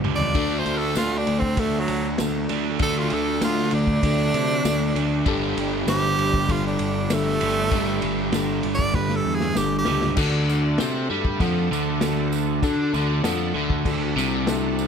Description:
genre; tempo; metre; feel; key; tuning
classic rock; 98 BPM; 4/4; straight; D mixolydian; A4 = 440 Hz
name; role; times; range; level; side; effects
bright tonewheel organ; sustained chords; 0.0-14.9 s; F#3 to F#5; -37 LUFS; left 1 dB; none
overdriven electric guitar; riff; 0.0-14.9 s; G2 to D4; -27 LUFS; left 11 dB; phaser
overdriven electric guitar; riff; 0.0-14.9 s; G2 to D4; -26 LUFS; right 13 dB; none
fuzz picked electric bass; bass; 0.0-14.9 s; G1 to D3; -28 LUFS; equal; overdrive
vintage drum kit; drums; 0.0-14.6 s; crash cymbal, kick drum, ride cymbal, snare drum, toms; -28 LUFS; equal; none
bright tenor saxophone; melody; 0.2-10.2 s; F#3 to D5; -26 LUFS; right 3 dB; none
reed electric piano; accompaniment; 0.3-14.9 s; F#3 to F#5; -32 LUFS; left 8 dB; none
tambourine; percussion; 1.0-14.9 s; none; -39 LUFS; right 12 dB; none
room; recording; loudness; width
light reverb, small room ambience; none; -20 LUFS; side -7 dB against mid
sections
0.0-10.2 A section; 10.2-14.9 B section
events
drum fill 0.0-0.4, 8.9-10.2; tenor saxophone solo 0.0-10.2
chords
0.4 D; 5.3 Gsus2; 10.2 D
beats
| 0.35 0.96 1.58 2.19 | 2.81 3.42 4.04 4.65 | 5.26 5.88 6.49 7.11 | 7.72 8.33 8.95 9.56 | 10.18 10.79 11.40 12.02 | 12.63 13.24 13.86 14.47

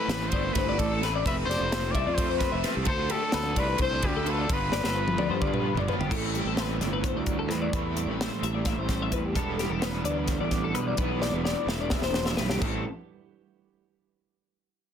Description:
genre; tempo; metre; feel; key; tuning
math rock and midwest emo; 259 BPM (eighths); 7/8; straight; A minor; A4 = 440 Hz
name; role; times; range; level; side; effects
clear trumpet; melody; 0.0-5.7 s; G4 to E5; -31 LUFS; left 2 dB; digital delay
twelve-string electric guitar; arpeggios; 0.0-12.8 s; G4 to E5; -32 LUFS; left 6 dB; analog chorus
cranked stack guitar; riff; 0.0-12.8 s; G2 to F4; -33 LUFS; right 2 dB; overdrive, tremolo
fuzz fingered electric bass; bass; 0.1-12.8 s; E1 to G2; -31 LUFS; equal; overdrive
crisp fusion drum kit; drums; 0.1-12.7 s; crash cymbal, hi-hat, kick drum, ride cymbal, snare drum, toms; -30 LUFS; equal; none
twelve-string electric guitar; accompaniment; 6.1-12.8 s; E2 to A4; -35 LUFS; right 8 dB; spring reverb
room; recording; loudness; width
light reverb; dense, heavily limited modern master; -25 LUFS; side -8 dB against mid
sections
0.0-6.1 A section; 6.1-12.6 B section; 12.6-14.2 C section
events
drum fill 4.7-6.1, 11.2-12.6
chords
0.0 Am9; 1.3 Fmaj7#11; 2.9 Dm7; 4.5 G7; 6.1 Am11; 9.4 Em7; 12.6 A7sus2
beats
0.10 0.33 0.56 0.79 1.02 | 1.26 1.49 1.72 1.95 2.18 2.41 2.64 | 2.87 3.10 3.33 3.57 3.80 4.03 4.26 | 4.49 4.72 4.95 5.18 5.42 5.65 5.88 | 6.11 6.34 6.58 6.81 7.04 7.27 7.51 | 7.74 7.97 8.20 8.44 8.67 8.90 9.13 | 9.37 9.60 9.83 10.07 10.30 10.53 10.76 | 11.00 11.23 11.46 11.69 11.93 12.16 12.39 | 12.62

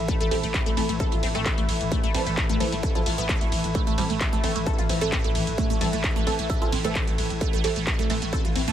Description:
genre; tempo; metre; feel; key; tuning
driving peak-time techno; 131 BPM; 4/4; straight; A minor; A4 = 440 Hz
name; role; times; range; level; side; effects
growling 808-style bass; bass; 0.0-8.7 s; A1; -31 LUFS; equal; tube saturation, sidechain pumping, low-pass filter
swarming drone; drone; 0.0-8.7 s; A2 to E3; -33 LUFS; left 1 dB; built-in reverb, sidechain pumping
warbly tape-like pad; texture; 0.0-8.7 s; A4 to B5; -33 LUFS; equal; chorus, built-in reverb, phaser, sidechain pumping
resonant blip pluck; riff; 0.1-8.7 s; G3 to A4; -30 LUFS; equal; phaser, analog chorus, cassette tape, sidechain pumping, digital delay
electronic kick drum; drums; 0.1-8.4 s; none; -25 LUFS; equal; distortion
techno drum kit; drums; 0.1-8.7 s; handclaps, hi-hat, ride cymbal; -31 LUFS; right 1 dB; sidechain pumping on hats, sidechain pumping on cymbals
filtered dub chord stab; stabs; 0.3-8.7 s; E3 to A4; -32 LUFS; right 4 dB; phaser, analog chorus, sidechain pumping, tape echo
room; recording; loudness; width
light reverb; none; -22 LUFS; side -10 dB against mid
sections
0.0-8.7 A section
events
none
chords
0.0 Am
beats
| 0.08 0.54 1.00 1.46 | 1.92 2.37 2.83 3.29 | 3.75 4.21 4.66 5.12 | 5.58 6.04 6.50 6.95 | 7.41 7.87 8.33

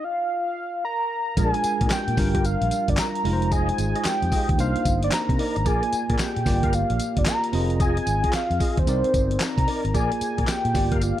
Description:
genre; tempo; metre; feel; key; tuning
R&B, new jack swing; 112 BPM; 4/4; swing 64% on 16ths; F dorian; A4 = 440 Hz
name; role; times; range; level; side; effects
warm velvety synth lead; melody; 0.0-11.2 s; C5 to Bb5; -26 LUFS; equal; chorus
bell-like tine electric piano; accompaniment; 1.4-11.2 s; G3 to Eb5; -28 LUFS; right 1 dB; fast stereo tremolo
tonewheel organ; stabs; 1.4-11.0 s; D4 to F5; -33 LUFS; left 2 dB; overdrive, chorus vibrato, slow rotary speaker
fingered electric bass; bass; 1.4-11.1 s; F1 to C3; -26 LUFS; equal; none
dusty soul sampler-style drum kit; drums; 1.4-11.2 s; handclaps, hi-hat, kick drum, snare drum, tambourine; -25 LUFS; equal; none
group handclap; percussion; 1.9-10.6 s; none; -36 LUFS; left 7 dB; none
room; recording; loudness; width
light reverb; none; -20 LUFS; side -12 dB against mid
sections
0.0-1.4 A section; 1.4-11.2 B section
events
stop 0.0-1.4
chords
0.0 N.C.; 1.4 Bb7; 2.2 Gm7; 3.2 Fm7; 4.6 Cm9; 5.7 Bb7; 6.5 Gm7; 7.5 Fm7; 8.9 Cm9; 9.9 Bb7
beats
0.30 0.84 | 1.37 1.91 2.44 2.98 | 3.52 4.05 4.59 5.12 | 5.66 6.19 6.73 7.26 | 7.80 8.34 8.87 9.41 | 9.94 10.48 11.02

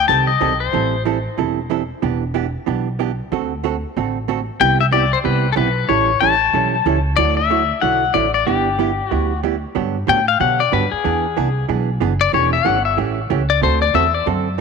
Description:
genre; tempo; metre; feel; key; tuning
country, western swing; 186 BPM; 4/4; swing 62% on 8ths; G major; A4 = 440 Hz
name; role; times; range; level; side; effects
pedal steel guitar; melody; 0.0-1.0, 4.6-14.3 s; G4 to A5; -17 LUFS; left 10 dB; none
upright bass; bass; 0.0-14.6 s; E1 to B2; -22 LUFS; right 1 dB; none
hollow-body jazz guitar; accompaniment; 0.1-14.6 s; C3 to A4; -21 LUFS; right 16 dB; none
room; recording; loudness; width
moderate plate reverb, RT60 3.2 s; 1960s-style stereo with parts hard left and right; -15 LUFS; side -5 dB against mid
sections
0.0-9.8 A section; 9.8-14.6 B section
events
pedal steel guitar solo 9.8-14.6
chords
0.0 Cm6; 0.7 Am7; 2.0 Em7; 3.3 D7; 4.6 Cmaj7; 5.9 A7; 7.2 Dadd9; 8.5 G6; 9.8 Gmaj7; 11.0 E7; 12.3 A7/E; 13.6 D7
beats
0.09 0.41 | 0.73 1.06 1.38 1.70 | 2.02 2.35 2.67 2.99 | 3.31 3.64 3.96 4.28 | 4.60 4.92 5.25 5.57 | 5.89 6.21 6.54 6.86 | 7.18 7.50 7.83 8.15 | 8.47 8.79 9.11 9.44 | 9.76 10.08 10.40 10.72 | 11.05 11.37 11.69 12.01 | 12.33 12.65 12.98 13.30 | 13.62 13.94 14.26 14.59

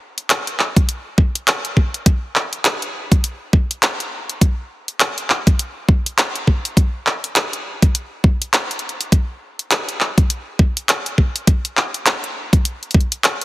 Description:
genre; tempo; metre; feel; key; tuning
glitch hop; 102 BPM; 4/4; swing 59% on 16ths; none; none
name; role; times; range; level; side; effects
pop drum kit; drums; 0.2-13.4 s; handclaps, hi-hat; -18 LUFS; equal; overdrive
electronic kick drum; drums; 0.8-13.1 s; none; -13 LUFS; equal; overdrive
room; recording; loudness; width
light reverb; heavily compressed radio sound; -16 LUFS; side -18 dB against mid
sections
0.0-13.4 A section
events
none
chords
none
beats
0.30 0.89 1.48 | 2.06 2.65 3.24 3.83 | 4.42 5.00 5.59 6.18 | 6.77 7.36 7.95 8.53 | 9.12 9.71 10.30 10.89 | 11.47 12.06 12.65 13.24

